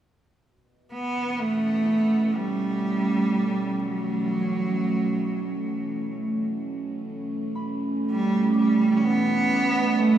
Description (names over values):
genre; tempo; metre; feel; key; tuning
ambient; 63 BPM; 4/4; straight; G lydian; A4 = 439 Hz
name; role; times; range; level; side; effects
evolving wavetable pad; sustained chords; 1.4-10.2 s; B2 to C#4; -24 LUFS; right 2 dB; phaser, built-in reverb
clear cello; melody; 0.9-10.2 s; F#3 to C#4; -24 LUFS; right 1 dB; tape echo
concert harp; arpeggios; 1.8-10.2 s; E3 to D6; -45 LUFS; left 1 dB; none
room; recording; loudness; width
wet cathedral reverb, RT60 5.6 s; in a vast, echoing space, studio reverb; -22 LUFS; side -10 dB against mid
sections
0.5-10.2 A section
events
filter sweep on ambient pad 0.5-10.2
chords
0.5 Gadd9